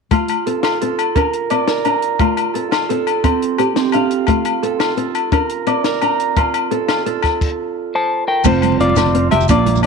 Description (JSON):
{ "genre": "highlife guitar band", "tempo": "115 BPM (dotted quarters)", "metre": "12/8", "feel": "straight", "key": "F major", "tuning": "A4 = 439 Hz", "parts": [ { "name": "nylon-string guitar", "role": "accompaniment", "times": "0.1-9.7 s", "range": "A3 to D4", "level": "-23 LUFS", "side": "left 10 dB", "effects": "none" }, { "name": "Celtic harp", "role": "arpeggios", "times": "0.1-9.9 s", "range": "Bb3 to Bb5", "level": "-18 LUFS", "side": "right 9 dB", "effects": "slapback echo" }, { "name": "compact cocktail drum kit", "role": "drums", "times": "0.1-9.9 s", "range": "crash cymbal, hi-hat, kick drum, snare drum", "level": "-22 LUFS", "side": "left 2 dB", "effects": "none" }, { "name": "agogo bells", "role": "percussion", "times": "0.1-9.9 s", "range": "none", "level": "-21 LUFS", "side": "left 14 dB", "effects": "none" }, { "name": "semi-hollow electric guitar", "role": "melody", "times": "8.0-9.9 s", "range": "F4 to A5", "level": "-16 LUFS", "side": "left 3 dB", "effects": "spring reverb" }, { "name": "fingered electric bass", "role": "bass", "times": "8.4-9.9 s", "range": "F1 to Bb1", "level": "-18 LUFS", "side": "right 1 dB", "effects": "none" }, { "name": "shekere", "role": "percussion", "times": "8.4-9.8 s", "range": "none", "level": "-22 LUFS", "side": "right 7 dB", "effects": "none" }, { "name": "congas", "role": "percussion", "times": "8.5-9.9 s", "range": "none", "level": "-21 LUFS", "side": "right 12 dB", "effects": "none" } ], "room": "moderate plate reverb, RT60 2.1 s", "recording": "1960s-style stereo with parts hard left and right", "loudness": "-14 LUFS", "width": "side -5 dB against mid", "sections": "0.1-8.5 A section; 8.5-9.9 B section", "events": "none", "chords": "0.1 F; 1.2 Bb; 2.2 F; 3.2 Csus4; 4.3 F; 5.3 Bb; 6.4 F; 7.4 Am; 8.5 F" }